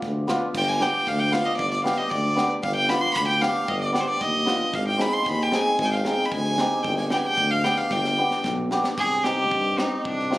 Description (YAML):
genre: klezmer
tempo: 114 BPM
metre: 2/4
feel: straight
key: G phrygian dominant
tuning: A4 = 439 Hz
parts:
  - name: mellow tuba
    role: bass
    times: 0.0-10.4 s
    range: G1 to G2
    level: -28 LUFS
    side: equal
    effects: none
  - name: tight funk drum kit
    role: drums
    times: 0.0-10.4 s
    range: crash cymbal, kick drum, snare drum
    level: -32 LUFS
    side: right 1 dB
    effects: none
  - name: hammered dulcimer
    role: accompaniment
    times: 0.3-10.4 s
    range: B3 to Ab4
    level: -26 LUFS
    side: equal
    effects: none
  - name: bright violin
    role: melody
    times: 0.6-10.4 s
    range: D4 to C6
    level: -23 LUFS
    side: equal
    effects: none
room: light reverb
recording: recorded on a phone in the room, club reverb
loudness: -20 LUFS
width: side -17 dB against mid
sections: 0.5-9.0 A section; 9.0-10.4 B section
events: drum fill 7.9-9.0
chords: 0.0 G (rootless); 0.5 G; 4.7 Ab; 6.8 G; 9.0 Cm